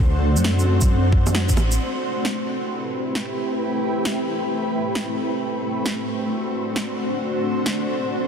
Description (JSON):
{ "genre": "future garage", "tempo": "133 BPM", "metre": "4/4", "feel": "swing 64% on 16ths", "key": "A dorian", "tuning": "A4 = 439 Hz", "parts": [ { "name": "granular cloud pad", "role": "sustained chords", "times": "0.0-8.3 s", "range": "A3 to C5", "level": "-23 LUFS", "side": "equal", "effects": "built-in reverb, sidechain pumping" }, { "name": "dark detuned saw bass", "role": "bass", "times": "0.0-1.8 s", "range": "A1 to F#2", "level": "-19 LUFS", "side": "equal", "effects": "none" }, { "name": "electronic kick drum", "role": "drums", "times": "0.0-1.6 s", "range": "none", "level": "-19 LUFS", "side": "equal", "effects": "overdrive, small room ambience" }, { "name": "electronic shaker, snare drum and bongos", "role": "drums", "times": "0.4-7.8 s", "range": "none", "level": "-28 LUFS", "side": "right 1 dB", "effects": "overdrive, small room ambience" } ], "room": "moderate huge ambient reverb, RT60 4.2 s", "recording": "dense, heavily limited modern master", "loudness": "-20 LUFS", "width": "side -7 dB against mid", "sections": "0.0-1.8 A section; 1.8-8.3 B section", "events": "band accent 1.3", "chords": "0.0 D7; 1.8 Am9; 5.4 D7" }